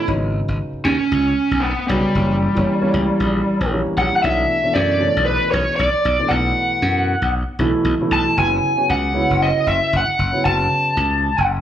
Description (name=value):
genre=electric jazz fusion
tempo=116 BPM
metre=4/4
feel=swing 55% on 16ths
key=B minor from 4.2 s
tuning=A4 = 440 Hz
part: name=lead guitar through a small cranked amp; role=melody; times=0.0-11.5 s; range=G3 to A5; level=-18 LUFS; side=equal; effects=overdrive
part: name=dark grand piano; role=accompaniment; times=0.0-11.3 s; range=B2 to F#4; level=-22 LUFS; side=right 1 dB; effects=none
part: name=glassy slap bass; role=bass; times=0.1-11.6 s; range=F#1 to F#2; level=-22 LUFS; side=equal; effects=none
room=wet large studio reverb, RT60 1.0 s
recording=band playing live in one room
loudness=-16 LUFS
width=side -10 dB against mid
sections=0.0-4.2 A section; 4.2-11.6 B section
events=none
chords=0.1 G#m7; 2.2 F#7b9; 4.2 Bm11; 8.4 F#m11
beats=| 0.09 0.61 1.13 1.65 | 2.17 2.68 3.20 3.72 | 4.24 4.76 5.28 5.80 | 6.31 6.83 7.35 7.87 | 8.39 8.90 9.42 9.94 | 10.46 10.98 11.50